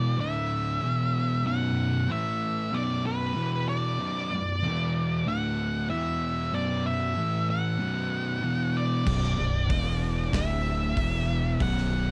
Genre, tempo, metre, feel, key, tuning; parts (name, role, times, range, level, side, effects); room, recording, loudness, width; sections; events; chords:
stoner and doom metal; 95 BPM; 4/4; straight; B minor; A4 = 440 Hz
octave-fuzz lead guitar; melody; 0.0-12.1 s; B4 to F#5; -34 LUFS; equal; distortion, digital delay
sludgy distorted guitar; riff; 0.0-12.1 s; B1 to A3; -37 LUFS; equal
thick fuzz guitar; riff; 0.0-12.1 s; B1 to A3; -33 LUFS; equal; distortion
thick fuzz guitar; riff; 0.0-12.1 s; B1 to A3; -34 LUFS; equal; distortion
growling fingered electric bass; bass; 9.1-12.1 s; B0 to E1; -33 LUFS; equal; overdrive
big rock drum kit; drums; 9.1-11.9 s; crash cymbal, hi-hat, kick drum, snare drum; -34 LUFS; equal
moderate small room reverb, RT60 0.6 s; dark, warm production; -28 LUFS; mono
0.0-12.1 A section
0.2 D5; 0.8 E5; 1.5 B5; 2.1 A5; 2.7 Bm; 3.4 E5; 4.0 Bm; 4.6 E5; 5.3 D5; 5.9 E5; 6.5 Bm; 7.2 A5; 7.8 B5; 8.4 E5; 9.1 Bm; 9.7 E5; 10.3 D5; 11.0 E5; 11.6 B5